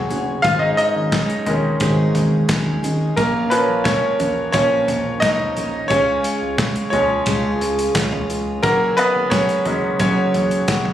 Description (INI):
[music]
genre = piano-driven pop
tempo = 88 BPM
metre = 4/4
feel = straight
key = F# major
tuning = A4 = 440 Hz
[part]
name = bright grand piano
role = accompaniment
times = 0.0-10.9 s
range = D#3 to E#5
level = -19 LUFS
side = left 1 dB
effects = none
[part]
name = picked steel-string acoustic guitar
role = riff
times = 0.0-10.9 s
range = G#2 to A#4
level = -22 LUFS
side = right 2 dB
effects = none
[part]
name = round analog bass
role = bass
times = 0.0-10.9 s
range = F#1 to C#2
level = -26 LUFS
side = left 1 dB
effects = none
[part]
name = modern studio drum kit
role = drums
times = 0.1-10.9 s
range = handclaps, hi-hat, kick drum, snare drum, toms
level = -24 LUFS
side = left 1 dB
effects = none
[sound]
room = moderate plate reverb, RT60 2.3 s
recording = recorded on a phone in the room, studio reverb, compression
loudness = -16 LUFS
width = side -11 dB against mid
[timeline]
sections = 0.0-10.9 A section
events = grand piano solo 0.0-10.9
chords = 0.4 G#sus4; 3.2 A#m; 5.9 C#; 8.6 F#sus2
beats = | 0.45 1.13 1.81 2.49 | 3.17 3.86 4.54 5.22 | 5.90 6.59 7.27 7.95 | 8.63 9.32 10.00 10.68